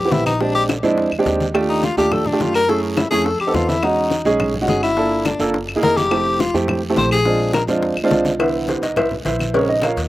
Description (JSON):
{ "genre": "Afro-Cuban jazz", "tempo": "210 BPM", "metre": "4/4", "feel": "straight", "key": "unclear", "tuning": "A4 = 439 Hz", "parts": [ { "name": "breathy tenor saxophone", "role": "second line", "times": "0.0-7.6 s", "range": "C#4 to C5", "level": "-19 LUFS", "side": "left 3 dB", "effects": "none" }, { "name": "clear upright piano", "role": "accompaniment", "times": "0.0-10.0 s", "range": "Db3 to F5", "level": "-18 LUFS", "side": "right 2 dB", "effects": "slapback echo" }, { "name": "upright bass", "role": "bass", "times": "0.0-10.1 s", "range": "F1 to F#2", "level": "-26 LUFS", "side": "equal", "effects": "none" }, { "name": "bongos and cowbell", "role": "percussion", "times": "0.1-10.1 s", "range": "none", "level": "-24 LUFS", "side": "left 4 dB", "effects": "none" }, { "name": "congas", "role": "percussion", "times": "0.1-10.1 s", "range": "none", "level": "-28 LUFS", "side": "left 1 dB", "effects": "none" }, { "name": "guiro", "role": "percussion", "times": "0.1-10.1 s", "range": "none", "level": "-34 LUFS", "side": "right 3 dB", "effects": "none" }, { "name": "claves", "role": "percussion", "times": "0.3-10.0 s", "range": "none", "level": "-28 LUFS", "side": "left 3 dB", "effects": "none" } ], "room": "little or no reverb", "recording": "recorded outdoors, with no room sound", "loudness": "-15 LUFS", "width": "side -16 dB against mid", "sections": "0.0-8.4 A section; 8.4-10.1 A section", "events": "tenor saxophone solo 0.0-8.4; upright piano solo 8.4-10.1", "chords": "0.4 Bb13; 1.5 Ebmaj9#11; 2.7 F#m9; 3.3 F7#11; 3.8 Emaj13; 5.0 Gm7; 5.5 F#13; 6.1 Fmaj9; 7.3 Bb9; 8.4 Cmaj7; 9.5 Bbm7" }